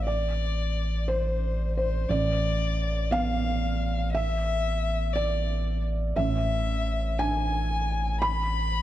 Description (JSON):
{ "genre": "neoclassical piano and strings", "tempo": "59 BPM (dotted quarters)", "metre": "6/8", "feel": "rubato", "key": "unclear", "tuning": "A4 = 440 Hz", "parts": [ { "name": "dark violin", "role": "melody", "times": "0.0-8.8 s", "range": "C5 to B5", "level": "-32 LUFS", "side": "left 6 dB", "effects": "none" }, { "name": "felt-muted upright piano", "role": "accompaniment", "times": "0.0-8.8 s", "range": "A1 to B5", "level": "-29 LUFS", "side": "right 3 dB", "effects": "none" }, { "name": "warm sub bass", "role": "bass", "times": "0.0-8.8 s", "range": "A1", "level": "-28 LUFS", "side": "equal", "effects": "none" } ], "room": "light reverb", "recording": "dark, warm production", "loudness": "-25 LUFS", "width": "side -13 dB against mid", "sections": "0.0-8.8 A section", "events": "none", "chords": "0.0 Am; 2.1 Dm69/A; 6.2 E7/A" }